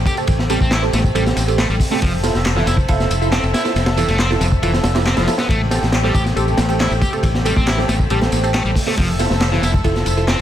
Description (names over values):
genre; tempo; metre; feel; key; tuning
breakbeat, breaks; 138 BPM; 4/4; straight; A minor; A4 = 440 Hz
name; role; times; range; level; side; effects
lush unison pad; sustained chords; 0.0-10.4 s; A3 to E5; -24 LUFS; left 1 dB; chorus, vintage 12-bit sampler grit, sidechain pumping
filtered dub chord stab; stabs; 0.0-10.4 s; C4 to A4; -23 LUFS; right 3 dB; phaser, dub echo
fingered electric bass; bass; 0.0-10.4 s; F1 to A1; -19 LUFS; equal; none
sludgy distorted guitar; riff; 0.1-10.4 s; E3 to G4; -24 LUFS; equal; overdrive, dub echo
crunchy breakbeat drum kit; drums; 0.1-10.4 s; hi-hat, kick drum, ride cymbal, snare drum; -19 LUFS; equal; none
electronic tambourine and handclaps; drums; 0.1-10.4 s; none; -28 LUFS; equal; none
congas; percussion; 5.6-10.3 s; none; -31 LUFS; right 3 dB; none
room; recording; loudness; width
light reverb, studio reverb; none; -14 LUFS; side -11 dB against mid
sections
0.0-10.4 A section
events
none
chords
0.0 Am7; 2.0 Fmaj7; 5.5 Am7; 9.0 Fmaj7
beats
| 0.28 0.72 1.15 1.58 | 2.02 2.46 2.89 3.33 | 3.76 4.19 4.63 5.06 | 5.50 5.93 6.37 6.80 | 7.24 7.67 8.11 8.54 | 8.98 9.41 9.85 10.28